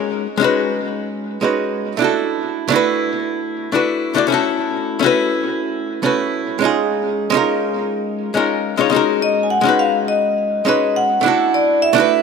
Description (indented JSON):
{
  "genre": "chillout",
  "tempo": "104 BPM",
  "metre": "4/4",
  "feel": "straight",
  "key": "unclear",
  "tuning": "A4 = 440 Hz",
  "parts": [
    { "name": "archtop guitar, miked and amplified", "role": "accompaniment", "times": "0.0-12.2 s", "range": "Ab3 to D5", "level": "-16 LUFS", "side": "moving between left 8 dB and right 8 dB", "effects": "auto-pan, tape echo" },
    { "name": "vibraphone with hard mallets", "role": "melody", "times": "9.2-12.2 s", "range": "D5 to Ab5", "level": "-16 LUFS", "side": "left 1 dB", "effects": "tape echo" }
  ],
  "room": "wet plate reverb, RT60 2.9 s",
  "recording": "none",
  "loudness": "-15 LUFS",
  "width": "side -5 dB against mid",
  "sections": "0.0-12.2 A section",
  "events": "none",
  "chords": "0.0 Db9sus4; 2.0 E9sus4; 4.6 Cb9sus4; 6.9 Eb9sus4; 9.2 Db9sus4; 11.2 E9sus4"
}